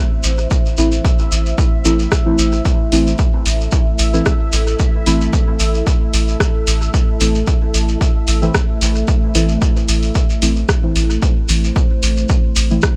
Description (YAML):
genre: dub techno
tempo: 112 BPM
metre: 4/4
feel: straight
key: A minor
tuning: A4 = 439 Hz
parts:
  - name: deep dark ambient pad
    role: sustained chords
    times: 0.1-13.0 s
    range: A3 to C5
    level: -28 LUFS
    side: equal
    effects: chorus, built-in reverb, sidechain pumping
  - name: deep mellow chord stab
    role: stabs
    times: 0.0-12.9 s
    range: E3 to E4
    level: -23 LUFS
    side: equal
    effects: chorus, phaser, sidechain pumping, dub echo
  - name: bubbling stepped-filter texture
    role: texture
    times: 0.0-13.0 s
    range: C5 to E5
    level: -33 LUFS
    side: equal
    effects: chorus, built-in reverb, sidechain pumping
  - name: soft dub sub bass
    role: bass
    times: 0.2-12.8 s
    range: A1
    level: -19 LUFS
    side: equal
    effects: sidechain pumping
  - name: shekere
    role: percussion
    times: 0.2-12.9 s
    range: none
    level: -26 LUFS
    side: equal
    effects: none
  - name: electronic kick drum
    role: drums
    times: 0.5-12.9 s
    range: none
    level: -18 LUFS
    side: equal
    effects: none
  - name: punchy analog drum machine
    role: drums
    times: 2.1-12.9 s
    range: hi-hat, rim click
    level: -24 LUFS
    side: equal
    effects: dub echo
room: little or no reverb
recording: none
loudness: -16 LUFS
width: mono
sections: 0.0-13.0 A section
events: none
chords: 0.0 Am